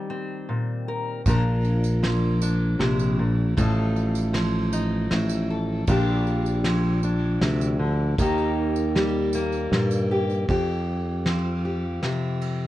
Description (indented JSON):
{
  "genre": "acoustic folk duo or small band",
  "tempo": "78 BPM",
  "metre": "3/4",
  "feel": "straight",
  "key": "F mixolydian",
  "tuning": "A4 = 439 Hz",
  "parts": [
    { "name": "fingerpicked steel-string acoustic guitar", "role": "accompaniment", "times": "0.0-12.7 s", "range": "F2 to Bb4", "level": "-24 LUFS", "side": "left 1 dB", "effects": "none" },
    { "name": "sustaining fretless electric bass", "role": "bass", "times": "1.3-12.0 s", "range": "A1 to G2", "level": "-24 LUFS", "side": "right 1 dB", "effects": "none" },
    { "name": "soft brush drum kit", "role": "drums", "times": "1.3-12.6 s", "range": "kick drum, ride cymbal, snare drum", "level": "-30 LUFS", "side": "right 1 dB", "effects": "none" },
    { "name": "tambourine", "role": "percussion", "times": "1.3-10.4 s", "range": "none", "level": "-41 LUFS", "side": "right 7 dB", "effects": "none" }
  ],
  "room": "light reverb",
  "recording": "worn, warbling old tape, cassette tape, warbly pitch drift",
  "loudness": "-21 LUFS",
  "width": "side -14 dB against mid",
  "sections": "0.0-10.5 A section; 10.5-12.7 B section",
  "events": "none",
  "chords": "0.0 Eb6; 1.2 Bbadd9; 3.6 F7/A; 5.9 Bb6; 8.2 Eb; 10.5 Fsus2"
}